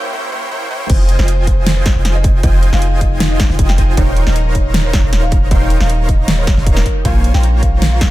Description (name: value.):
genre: future bass.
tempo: 156 BPM.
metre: 4/4.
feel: half-time.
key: F minor.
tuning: A4 = 442 Hz.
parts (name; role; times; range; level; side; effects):
warm concert grand piano; accompaniment; 0.0-0.9 s; Db3 to E4; -38 LUFS; left 4 dB; none.
dense compressed supersaw; riff; 0.0-8.1 s; Bb3 to Bb5; -22 LUFS; right 1 dB; sidechain pumping, dub echo.
kalimba; melody; 0.9-8.1 s; Bb4 to G5; -25 LUFS; equal; sidechain pumping, dub echo.
shimmering ambient pad; sustained chords; 2.1-8.1 s; F3 to Ab4; -27 LUFS; left 2 dB; chorus, built-in reverb, phaser, sidechain pumping.
long sustained 808-style bass; bass; 0.9-8.1 s; Eb1 to Bb1; -14 LUFS; equal; sidechain pumping, high-pass filter.
big-room dance drum kit; drums; 0.9-8.1 s; crash cymbal, hi-hat, snare drum; -19 LUFS; equal; none.
electronic kick drum; drums; 0.9-8.1 s; none; -14 LUFS; equal; none.
room: little or no reverb.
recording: high-pass filter.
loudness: -11 LUFS.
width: side -16 dB against mid.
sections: 0.9-8.1 A section.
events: break 0.0-0.9; drop 0.9-8.1.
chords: 0.0 C7b9; 0.9 Fm9; 4.0 Eb13; 6.9 Bbm7.